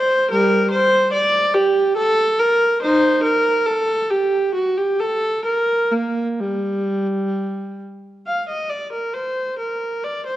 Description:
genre	classical, baroque-style suite movement for unaccompanied viola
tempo	63-72 BPM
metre	3/4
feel	rubato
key	G minor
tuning	A4 = 440 Hz
part	warm viola	solo	0.0-10.4 s	G3 to F5	-17 LUFS	equal	none
room	moderate recital hall reverb, RT60 1.4 s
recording	worn, warbling old tape, cassette tape, warbly pitch drift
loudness	-17 LUFS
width	side -14 dB against mid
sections	0.0-8.3 A section; 8.3-10.4 A section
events	none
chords	none

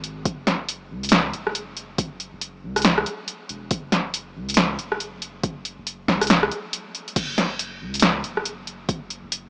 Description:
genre	deep dubstep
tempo	139 BPM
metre	4/4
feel	swing 61% on 16ths, half-time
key	unclear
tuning	A4 = 441 Hz
part	soft dub sub bass	bass	0.0-9.5 s	E1 to C#2	-39 LUFS	equal	transformer saturation
part	deep house drum kit	drums	0.0-9.4 s	crash cymbal, hi-hat, rim click, snare drum	-23 LUFS	equal	overdrive
part	electronic kick drum	drums	0.3-9.0 s	none	-29 LUFS	equal	overdrive
room	light reverb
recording	dry, gritty hardware recording, small speaker sound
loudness	-24 LUFS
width	mono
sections	0.0-9.5 A section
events	break 6.7-7.2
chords	none

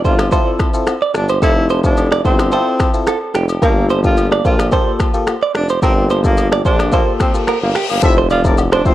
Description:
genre	afrobeats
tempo	109 BPM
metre	4/4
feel	straight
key	unclear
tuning	A4 = 439 Hz
part	barking FM electric piano	accompaniment	0.0-8.9 s	Bb3 to A4	-20 LUFS	left 3 dB	chorus
part	warm tuba	bass	0.0-8.9 s	F1 to Bb1	-18 LUFS	equal	none
part	afro-pop drum kit	drums	0.0-8.9 s	finger snaps, kick drum, rim click, shaker	-17 LUFS	equal	none
part	breathy tenor saxophone	melody	0.1-8.9 s	Bb3 to F4	-20 LUFS	equal	none
part	direct-recorded clean electric guitar	riff	0.1-8.8 s	G4 to D5	-20 LUFS	right 6 dB	spring reverb, tape echo
part	agogo bells and woodblock	percussion	0.2-8.7 s	none	-28 LUFS	left 5 dB	none
part	reverse cymbal and impact	sound effects	7.1-8.9 s	none	-24 LUFS	left 2 dB	none
part	mellow horn section	second line	8.0-8.9 s	A3 to E5	-21 LUFS	left 2 dB	none
room	small room ambience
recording	dry, gritty hardware recording, transformer saturation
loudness	-12 LUFS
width	side -14 dB against mid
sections	0.0-8.0 A section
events	reverse cymbal 7.1-8.0; impact 8.0-8.9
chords	0.0 Fmaj7; 3.6 Gm9; 8.0 Fmaj7

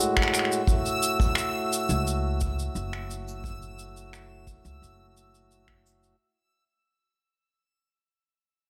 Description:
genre	folktronica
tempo	87 BPM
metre	4/4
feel	straight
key	F# minor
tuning	A4 = 440 Hz
part	mellow accordion	sustained chords	0.0-6.2 s	A2 to F#4	-32 LUFS	equal	vintage 12-bit sampler grit, low-pass filter
part	cabasa and finger snaps	drums	0.0-6.2 s	none	-31 LUFS	equal	none
part	backwards swelling texture	texture	0.0-6.2 s	E6	-36 LUFS	equal	built-in reverb
part	kick drum	drums	0.2-5.8 s	none	-29 LUFS	equal	none
part	upright bass	bass	1.9-6.1 s	F#1 to C#2	-34 LUFS	equal	none
room	light reverb, small room ambience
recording	none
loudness	-26 LUFS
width	mono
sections	0.0-6.2 A section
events	fade-out 0.0-6.2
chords	0.0 F#m

